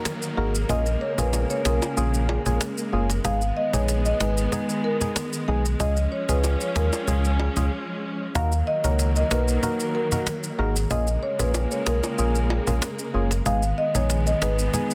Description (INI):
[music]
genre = dancehall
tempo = 94 BPM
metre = 4/4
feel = straight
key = Eb minor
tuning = A4 = 440 Hz
[part]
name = percussive organ stab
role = accompaniment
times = 0.0-14.9 s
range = Ab3 to Bb4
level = -32 LUFS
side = equal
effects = chorus
[part]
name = warm studio string section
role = sustained chords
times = 0.0-14.9 s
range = Db3 to Db4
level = -33 LUFS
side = equal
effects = none
[part]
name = downlifter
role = sound effects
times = 0.0-3.2 s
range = none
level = -47 LUFS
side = equal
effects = none
[part]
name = cajon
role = drums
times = 0.1-14.9 s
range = none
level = -32 LUFS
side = equal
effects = none
[part]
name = maracas and timbales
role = percussion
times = 0.1-14.9 s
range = none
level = -35 LUFS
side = equal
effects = none
[part]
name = marimba with medium mallets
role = melody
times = 0.4-14.5 s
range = Ab4 to F5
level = -31 LUFS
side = equal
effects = delay
[part]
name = sub bass with octave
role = bass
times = 0.4-14.7 s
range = Gb1 to Eb2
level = -26 LUFS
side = equal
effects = none
[sound]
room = small room ambience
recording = dense, heavily limited modern master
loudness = -24 LUFS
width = mono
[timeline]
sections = 0.0-14.9 A section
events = break 7.7-8.4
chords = 0.0 Ebm; 0.7 Bbm7; 3.2 Abm; 5.8 Db; 8.4 Ebm; 10.9 Bbm7; 13.5 Abm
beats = 0.06 | 0.69 1.33 1.97 2.61 | 3.25 3.88 4.52 5.16 | 5.80 6.44 7.08 7.71 | 8.35 8.99 9.63 10.27 | 10.91 11.54 12.18 12.82 | 13.46 14.10 14.74